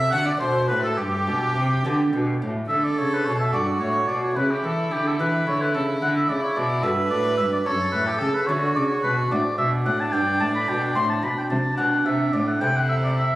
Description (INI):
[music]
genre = classical, baroque-style sonata movement with continuo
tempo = 72 BPM (dotted quarters)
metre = 6/8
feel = straight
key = D major, G major from 9.3 s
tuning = A4 = 440 Hz
[part]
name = clear oboe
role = melody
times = 0.0-13.4 s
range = G4 to C6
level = -24 LUFS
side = left 1 dB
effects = none
[part]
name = warm violin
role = second line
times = 0.0-13.4 s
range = D4 to F#5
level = -27 LUFS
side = right 2 dB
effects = none
[part]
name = lute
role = accompaniment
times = 0.0-13.4 s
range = F#2 to G4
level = -27 LUFS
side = equal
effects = none
[part]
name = rich cello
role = bass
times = 0.0-13.4 s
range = F#2 to E3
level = -26 LUFS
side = equal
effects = none
[sound]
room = wet recital hall reverb, RT60 1.7 s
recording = recorded on a phone in the room, studio reverb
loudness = -20 LUFS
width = side -16 dB against mid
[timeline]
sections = 0.0-2.7 A section; 2.7-13.4 A section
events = none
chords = 0.1 D; 1.0 G; 2.7 D; 4.4 A7/C#; 6.0 D; 7.7 D/F#; 9.3 D7/A; 10.1 G; 11.0 D7/A; 11.8 G/B; 12.6 Am/C